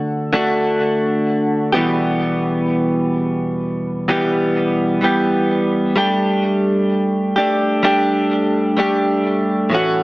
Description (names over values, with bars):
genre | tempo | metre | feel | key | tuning
pop | 64 BPM | 4/4 | straight | unclear | A4 = 442 Hz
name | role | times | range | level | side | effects
direct-recorded clean electric guitar | solo | 0.0-10.0 s | E2 to G4 | -15 LUFS | equal | lush chorus, digital delay
room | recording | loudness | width
moderate plate reverb, RT60 2.8 s | small speaker sound | -15 LUFS | side -20 dB against mid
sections
0.0-10.0 A section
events
none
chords
0.0 D; 1.7 Em; 6.0 Gsus2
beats
0.34 1.27 | 2.21 3.15 4.09 5.03 | 5.96 6.90 7.84 8.78 | 9.71